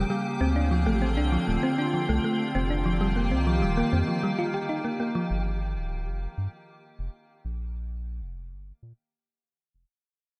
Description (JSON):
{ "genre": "IDM", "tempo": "98 BPM", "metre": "4/4", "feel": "straight", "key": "G minor", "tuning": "A4 = 440 Hz", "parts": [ { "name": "icy glass pad", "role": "sustained chords", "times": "0.0-5.3 s", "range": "Db3 to G4", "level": "-33 LUFS", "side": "equal", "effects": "chorus, built-in reverb" }, { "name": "round analog bass", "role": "bass", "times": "0.0-9.8 s", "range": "D1 to Bb2", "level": "-31 LUFS", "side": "equal", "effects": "tube saturation" }, { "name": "flickering grainy texture", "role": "texture", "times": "0.0-5.3 s", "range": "G4 to G5", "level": "-42 LUFS", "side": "equal", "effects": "built-in reverb" }, { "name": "thumb-piano-like synth pluck", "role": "arpeggios", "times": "0.1-5.2 s", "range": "F3 to G4", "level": "-30 LUFS", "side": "equal", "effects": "chorus, tape echo" } ], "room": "moderate lush hall reverb, RT60 2.7 s", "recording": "none", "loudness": "-27 LUFS", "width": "mono", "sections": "0.0-5.3 A section; 5.3-10.2 B section", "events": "break 4.1-5.3; fade-out 5.3-10.2", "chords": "0.4 Dm7; 2.9 F9sus4; 5.3 Gm7; 7.8 Bb5" }